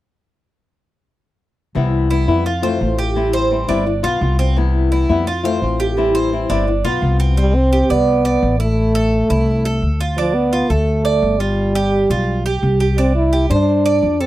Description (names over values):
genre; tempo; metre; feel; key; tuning
latin; 171 BPM; 4/4; straight; C major; A4 = 441 Hz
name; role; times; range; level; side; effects
flamenco guitar; accompaniment; 1.7-7.4 s; C3 to F4; -20 LUFS; left 5 dB; none
upright bass; bass; 1.8-14.3 s; G1 to G2; -18 LUFS; equal; none
Cuban tres; arpeggios; 2.1-14.3 s; C4 to D5; -20 LUFS; right 5 dB; none
warm French horn; melody; 7.4-14.3 s; F3 to E4; -17 LUFS; equal; none
room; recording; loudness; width
little or no reverb; dry, close 1970s-style studio recording; -14 LUFS; side -15 dB against mid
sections
1.8-7.4 A section; 7.4-14.3 B section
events
none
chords
1.8 Cmaj7; 2.5 Fmaj9; 3.2 Am7; 3.9 G7; 4.6 Cmaj7; 5.3 Fmaj9; 6.0 Am7; 6.7 G7; 7.4 Csus2; 8.8 Am; 10.2 Dm; 11.6 G7; 13.0 Cadd9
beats
| 1.75 2.10 2.46 2.81 | 3.16 3.51 3.86 4.21 | 4.57 4.92 5.27 5.62 | 5.97 6.32 6.67 7.02 | 7.37 7.72 8.07 8.43 | 8.78 9.13 9.48 9.83 | 10.18 10.53 10.88 11.23 | 11.58 11.93 12.28 12.63 | 12.98 13.33 13.68 14.03